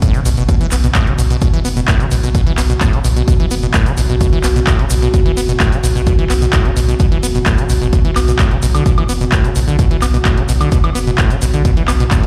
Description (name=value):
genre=acid house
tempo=129 BPM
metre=4/4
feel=straight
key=unclear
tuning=A4 = 440 Hz
part: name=acid bass, saw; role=riff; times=0.0-12.3 s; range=A2 to B3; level=-20 LUFS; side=equal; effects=tube saturation, sidechain pumping
part: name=electronic kick drum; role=drums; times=0.0-12.2 s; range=none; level=-17 LUFS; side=equal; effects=none
part: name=punchy analog drum machine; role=drums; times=0.0-12.3 s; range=handclaps, hi-hat, woodblock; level=-24 LUFS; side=equal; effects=none
part: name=egg shaker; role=percussion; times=0.0-12.2 s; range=none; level=-32 LUFS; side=equal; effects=none
part: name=warm sub bass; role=bass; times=0.3-12.1 s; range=F#1 to B1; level=-18 LUFS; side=equal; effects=sidechain pumping
part: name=dark analog pad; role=sustained chords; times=0.5-12.3 s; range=F#4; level=-26 LUFS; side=equal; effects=chorus, sidechain pumping
room=light reverb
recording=played on a big sound system in a bare room, large studio reverb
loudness=-14 LUFS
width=mono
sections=0.0-12.3 A section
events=none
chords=0.0 B5